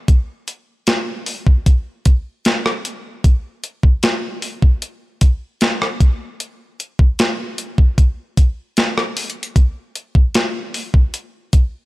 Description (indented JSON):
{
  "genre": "R&B",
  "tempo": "76 BPM",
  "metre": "4/4",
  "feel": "straight",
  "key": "none",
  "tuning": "none",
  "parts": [
    { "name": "clean 12-bit digital drum machine", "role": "drums", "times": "0.1-11.7 s", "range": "hi-hat, kick drum, rim click, snare drum", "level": "-14 LUFS", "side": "equal", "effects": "none" }
  ],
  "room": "light reverb",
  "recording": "none",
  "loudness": "-15 LUFS",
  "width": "side -20 dB against mid",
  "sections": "0.0-11.9 A section",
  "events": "none",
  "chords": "none"
}